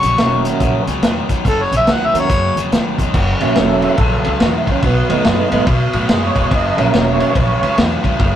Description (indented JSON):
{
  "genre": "electric blues shuffle",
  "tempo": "142 BPM",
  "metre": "4/4",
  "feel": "swing 63% on 8ths",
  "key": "F# mixolydian",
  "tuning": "A4 = 440 Hz",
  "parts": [
    { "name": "clear harmonica", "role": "melody", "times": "0.0-2.6 s", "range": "A4 to C#6", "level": "-15 LUFS", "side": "left 1 dB", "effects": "overdrive" },
    { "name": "cranked stack guitar", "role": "riff", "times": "0.0-8.4 s", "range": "F#2 to G#3", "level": "-20 LUFS", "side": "left 1 dB", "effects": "overdrive" },
    { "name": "upright bass", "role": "bass", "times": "0.0-8.4 s", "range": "E1 to B2", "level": "-20 LUFS", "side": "equal", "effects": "none" },
    { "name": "vintage drum kit", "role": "drums", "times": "0.0-8.3 s", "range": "crash cymbal, hi-hat, kick drum, ride cymbal, snare drum", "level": "-17 LUFS", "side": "equal", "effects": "none" },
    { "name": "mellow tonewheel organ", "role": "accompaniment", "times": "0.2-7.8 s", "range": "F#3 to D#5", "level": "-17 LUFS", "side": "right 3 dB", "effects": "slow rotary speaker, overdrive, chorus vibrato" }
  ],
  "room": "moderate booth ambience, RT60 0.2 s",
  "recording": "rough rehearsal-room recording, tube saturation",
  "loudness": "-12 LUFS",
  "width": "side -10 dB against mid",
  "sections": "0.0-3.1 A section; 3.1-8.4 B section",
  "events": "none",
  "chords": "0.0 F#7; 4.8 B7; 6.5 F#7"
}